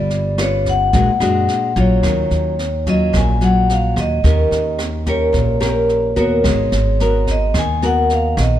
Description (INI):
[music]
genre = bossa nova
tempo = 109 BPM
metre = 4/4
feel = straight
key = Eb minor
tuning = A4 = 440 Hz
[part]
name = vibraphone with medium hard mallets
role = melody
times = 0.0-8.6 s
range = C#5 to Ab5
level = -20 LUFS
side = left 1 dB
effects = none
[part]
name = nylon-string guitar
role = accompaniment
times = 0.0-8.6 s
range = A#2 to B4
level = -18 LUFS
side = left 1 dB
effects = none
[part]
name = upright bass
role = bass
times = 0.0-8.6 s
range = G1 to F#2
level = -18 LUFS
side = right 1 dB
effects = none
[part]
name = jazz brush drum kit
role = drums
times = 0.1-8.5 s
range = kick drum, rim click, snare drum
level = -24 LUFS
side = equal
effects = none
[sound]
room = light reverb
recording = dark, warm production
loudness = -14 LUFS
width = side -11 dB against mid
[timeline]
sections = 0.0-2.0 A section; 2.0-8.6 B section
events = none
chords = 0.0 G7#11; 0.9 A#7alt; 2.0 Ebm9; 4.2 Eb7; 6.4 Abm9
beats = 0.39 0.94 1.49 | 2.04 2.59 3.14 3.69 | 4.24 4.79 5.34 5.89 | 6.44 6.99 7.54 8.09